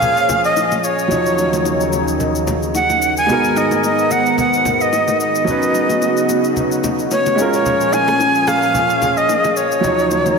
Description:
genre	amapiano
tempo	110 BPM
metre	4/4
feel	swing 55% on 16ths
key	G# dorian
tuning	A4 = 440 Hz
part	breathy bright jazz flute	melody	0.0-10.4 s	C#5 to G#5	-16 LUFS	equal	ping-pong delay
part	clear baby grand piano	accompaniment	0.0-10.4 s	E#3 to C#5	-21 LUFS	right 3 dB	none
part	lush unison pad	sustained chords	0.0-10.4 s	D#2 to A#4	-20 LUFS	left 1 dB	chorus, phaser
part	electronic shaker and rim click	drums	0.0-10.4 s	none	-29 LUFS	left 4 dB	none
part	congas and bongos	percussion	0.0-10.4 s	none	-26 LUFS	left 3 dB	none
room	wet lush hall reverb, RT60 2.3 s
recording	dreamy mix soaked in reverb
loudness	-14 LUFS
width	side -5 dB against mid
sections	0.0-10.4 A section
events	none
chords	0.0 A#m7; 1.1 D#m9; 3.3 G#m9; 5.5 C#9sus4; 7.4 A#m7; 9.8 D#m9

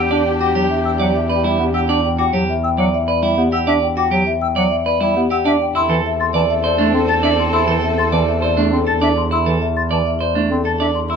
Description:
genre	classical, minimalist pattern music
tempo	101 BPM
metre	3/4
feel	straight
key	E minor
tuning	A4 = 439 Hz
part	marimba with soft mallets	melody	0.0-11.2 s	G4 to C6	-21 LUFS	left 11 dB	none
part	mellow soprano saxophone	second line	0.0-2.0, 5.8-9.1 s	G4 to A4	-26 LUFS	right 2 dB	none
part	warm studio violin section	sustained chords	0.0-2.0, 5.7-9.1 s	C4 to A4	-26 LUFS	left 3 dB	none
part	clean electric guitar	arpeggios	0.0-11.2 s	D4 to D5	-20 LUFS	right 7 dB	none
part	warm double bass	bass	0.0-11.2 s	E2	-22 LUFS	right 3 dB	none
part	warm bass clarinet	accompaniment	0.1-10.9 s	E3 to D4	-21 LUFS	equal	none
part	silver concert flute	arpeggios	0.4-11.2 s	E5 to A6	-25 LUFS	left 4 dB	none
room	moderate large studio reverb, RT60 1.1 s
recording	close, detailed microphones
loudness	-14 LUFS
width	side -6 dB against mid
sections	0.0-11.2 A section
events	none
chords	0.0 Em7; 5.8 Am/E

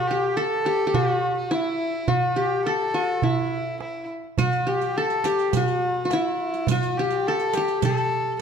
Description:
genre	Arabic maqam ensemble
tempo	104 BPM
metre	4/4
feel	straight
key	unclear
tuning	A4 = 442 Hz
part	qanun	melody	0.0-8.4 s	E4 to A4	-23 LUFS	left 2 dB	none
part	warm violin	second line	0.0-8.4 s	E4 to A4	-29 LUFS	right 1 dB	none
part	darbuka	percussion	0.1-8.3 s	none	-27 LUFS	right 7 dB	none
part	riq	percussion	4.4-8.0 s	none	-34 LUFS	right 8 dB	none
room	moderate recital hall reverb, RT60 1.5 s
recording	none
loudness	-21 LUFS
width	side -6 dB against mid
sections	0.0-8.4 A section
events	none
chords	none

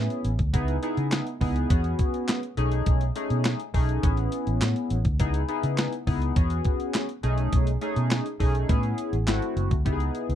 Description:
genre	early-eighties boogie funk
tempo	103 BPM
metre	4/4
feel	straight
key	C# minor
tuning	A4 = 440 Hz
part	chorused polysynth	accompaniment	0.0-10.3 s	A3 to G#4	-29 LUFS	left 2 dB	none
part	vintage muted fingered electric bass	bass	0.0-10.3 s	F#1 to C#3	-26 LUFS	equal	none
part	clean 12-bit digital drum machine	drums	0.1-10.3 s	handclaps, hi-hat, kick drum, snare drum	-25 LUFS	equal	none
room	light reverb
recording	dark, warm production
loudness	-23 LUFS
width	side -10 dB against mid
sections	0.0-9.9 A section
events	none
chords	0.0 Amaj7; 0.5 C#m9; 1.7 E6; 2.6 B13; 4.0 Amaj7; 5.2 C#m9; 6.4 E6; 7.2 B13; 8.7 Amaj7; 9.3 G#7b9b13

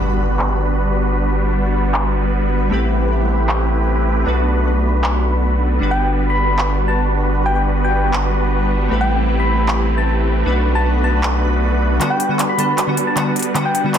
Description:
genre	future bass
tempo	155 BPM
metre	4/4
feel	half-time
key	G major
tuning	A4 = 441 Hz
part	glassy digital keys	accompaniment	0.0-14.0 s	D3 to B4	-26 LUFS	left 1 dB	chorus, digital delay
part	shimmering ambient pad	sustained chords	0.0-14.0 s	G3 to B5	-28 LUFS	equal	chorus, built-in reverb
part	supersaw chords	riff	0.0-14.0 s	G3 to B4	-20 LUFS	right 1 dB	low-pass filter
part	saturated sub bass	bass	0.0-12.0 s	G1 to B1	-18 LUFS	equal	none
part	impact	sound effects	0.0-1.2 s	none	-31 LUFS	equal	none
part	big-room dance drum kit	drums	0.4-14.0 s	handclaps, hi-hat	-23 LUFS	right 1 dB	overdrive, low-pass filter on hats, low-pass filter on cymbals, low-pass filter on snare, low-pass filter on toms
part	soft struck synth lead	melody	5.9-13.8 s	G5 to B5	-22 LUFS	left 2 dB	chorus, dub echo
room	light reverb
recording	dense, heavily limited modern master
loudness	-15 LUFS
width	side -8 dB against mid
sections	0.0-12.0 A section; 12.0-14.0 B section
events	impact 0.0-1.2; filter sweep on drum 0.0-12.0; build-up 12.0-14.0; drum fill 12.0-14.0; filter sweep on supersaw synth 12.0-14.0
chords	0.0 Gmaj7; 2.7 Am9; 4.3 Bm7; 5.8 Gmaj7; 8.9 Am9; 10.5 Bm7; 12.0 Gmaj7

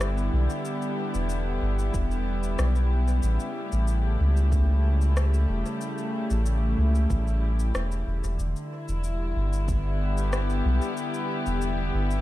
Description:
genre	ambient dub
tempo	93 BPM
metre	4/4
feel	straight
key	E dorian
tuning	A4 = 443 Hz
part	dark studio string section	sustained chords	0.0-12.2 s	C#3 to G4	-30 LUFS	left 1 dB	none
part	soft dub sub bass	bass	0.0-12.2 s	E1 to C#2	-24 LUFS	equal	none
part	electronic rim click and cabasa	drums	0.0-12.2 s	none	-37 LUFS	left 1 dB	studio reverb, dub echo
part	electronic kick drum	drums	1.9-9.8 s	none	-29 LUFS	equal	studio reverb
room	little or no reverb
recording	none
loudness	-23 LUFS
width	side -15 dB against mid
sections	0.0-12.2 A section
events	none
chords	0.0 Em7; 3.2 A7; 8.4 Em7

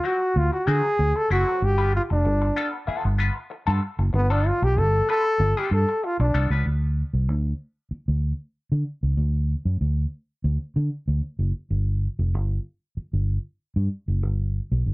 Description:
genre	funk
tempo	95 BPM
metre	4/4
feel	straight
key	unclear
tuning	A4 = 440 Hz
part	bright trombone	melody	0.0-6.5 s	B3 to A4	-23 LUFS	equal	none
part	semi-hollow electric guitar	accompaniment	0.0-6.6 s	F#3 to B4	-30 LUFS	left 4 dB	wah
part	vintage muted fingered electric bass	bass	0.4-14.9 s	F1 to D3	-22 LUFS	equal	none
room	light reverb, studio ambience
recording	dark, warm production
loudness	-21 LUFS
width	side -21 dB against mid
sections	0.0-6.7 A section; 6.7-14.9 B section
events	trombone solo 0.0-6.7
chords	0.0 D9; 1.6 G9; 6.7 N.C.

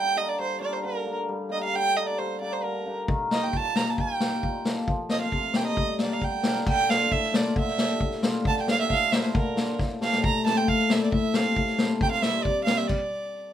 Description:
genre	klezmer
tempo	134 BPM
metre	2/4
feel	straight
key	G minor, D minor from 6.7 s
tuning	A4 = 440 Hz
part	warm violin	melody	0.0-13.5 s	Bb4 to Bb5	-27 LUFS	right 4 dB	none
part	cimbalom	accompaniment	0.0-12.9 s	A2 to Bb4	-29 LUFS	left 2 dB	none
part	street-band drum kit	drums	3.1-13.0 s	crash cymbal, kick drum, snare drum	-26 LUFS	left 2 dB	none
room	moderate studio ambience, RT60 0.5 s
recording	minimal, uncompressed stereo recording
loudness	-23 LUFS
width	side -10 dB against mid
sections	0.0-6.7 A section; 6.7-13.5 B section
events	drum fill 9.8-10.2; stop 12.9-13.5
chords	0.0 Gm; 3.1 Eb; 4.9 F; 5.8 Gm; 6.7 Dm; 10.2 Am; 12.0 C; 12.9 N.C.

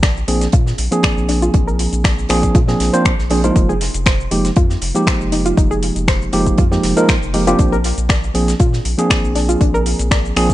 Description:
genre	deep house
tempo	119 BPM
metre	4/4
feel	swing 53% on 16ths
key	unclear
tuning	A4 = 440 Hz
part	soft round pluck	arpeggios	0.0-10.2 s	D4 to D5	-24 LUFS	left 1 dB	chorus, sidechain pumping, digital delay
part	warm sub bass	bass	0.0-10.5 s	F1 to Bb2	-20 LUFS	equal	sidechain pumping
part	deep house drum kit	drums	0.0-10.5 s	finger snaps, hi-hat, shaker	-22 LUFS	left 2 dB	overdrive
part	electronic kick drum	drums	0.0-10.5 s	none	-15 LUFS	equal	overdrive
part	modern studio drum kit	drums	0.0-10.5 s	hi-hat, snare drum	-30 LUFS	right 3 dB	sidechain pumping on hats, high-pass filter on hats, high-pass filter on snare, high-pass filter on room
part	tine electric piano	stabs	0.3-10.5 s	F3 to C5	-18 LUFS	right 1 dB	overdrive, digital delay
room	digital ambience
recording	nothing above 10.4 kHz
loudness	-13 LUFS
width	side -15 dB against mid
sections	0.0-10.5 A section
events	none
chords	0.0 Bb9; 3.6 Fm11; 7.6 Bb9

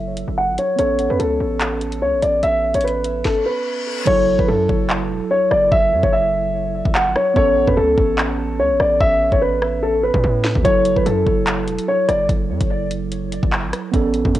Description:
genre	hip hop, drill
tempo	146 BPM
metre	4/4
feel	half-time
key	F# minor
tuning	A4 = 441 Hz
part	dark grand piano	melody	0.0-12.3 s	A4 to F#5	-18 LUFS	left 1 dB	low-pass filter, cassette tape, tape echo
part	mellow tine electric piano	accompaniment	0.0-14.4 s	F#3 to A4	-24 LUFS	right 7 dB	slow stereo tremolo, low-pass filter, cassette tape
part	hard-hitting 808-style bass	bass	0.0-14.4 s	E1 to A2	-24 LUFS	equal	none
part	drill drum kit	drums	0.2-14.4 s	crash cymbal, handclaps, hi-hat, kick drum, rim click, snare drum	-21 LUFS	equal	vintage 12-bit sampler grit, cassette tape
part	reverse cymbal and impact	sound effects	3.4-5.7 s	none	-31 LUFS	left 3 dB	none
room	light reverb, digital ambience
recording	home recording on cassette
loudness	-15 LUFS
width	side -14 dB against mid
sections	0.0-4.1 A section; 4.1-14.4 B section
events	filter sweep 0.0-4.1; stop 3.3-4.1; reverse cymbal 3.4-4.1; hi-hats muted 4.1-10.6; impact 4.1-5.7; drum fill 10.2-10.6; break 12.3-14.4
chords	0.0 F#m7; 0.8 Aadd9; 4.1 F#m7; 7.4 Aadd9; 10.6 F#m7

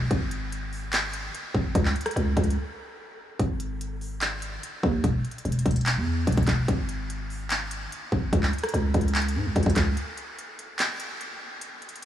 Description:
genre	hip hop, trap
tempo	146 BPM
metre	4/4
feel	half-time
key	unclear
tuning	A4 = 440 Hz
part	growling 808-style bass	bass	0.0-10.0 s	E1 to G#2	-26 LUFS	equal	none
part	trap drum kit	drums	0.1-12.1 s	handclaps, hi-hat, kick drum, rim click	-28 LUFS	equal	none
room	light reverb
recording	small room ambience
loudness	-24 LUFS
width	side -11 dB against mid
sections	0.0-10.0 A section; 10.0-12.1 B section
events	break 2.6-3.4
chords	none

